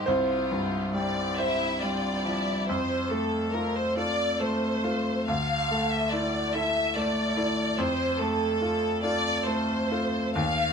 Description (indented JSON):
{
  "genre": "neoclassical piano and strings",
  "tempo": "47 BPM (dotted quarters)",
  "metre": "6/8",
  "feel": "uneven beats, rubato",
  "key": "F major",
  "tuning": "A4 = 440 Hz",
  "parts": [
    { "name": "rich studio violin section", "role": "melody", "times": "0.0-10.7 s", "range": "E4 to F5", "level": "-28 LUFS", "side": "left 1 dB", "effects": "none" },
    { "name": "bright baby grand piano", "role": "accompaniment", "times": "0.0-10.7 s", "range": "C2 to C5", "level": "-27 LUFS", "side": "equal", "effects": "none" }
  ],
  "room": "wet studio reverb, RT60 0.6 s",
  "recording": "dark, warm production",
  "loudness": "-24 LUFS",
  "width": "side -6 dB against mid",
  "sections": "0.0-2.7 A section; 2.7-10.7 B section",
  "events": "none",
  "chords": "0.1 Csus4; 2.7 F; 5.3 Dsus2; 7.8 F"
}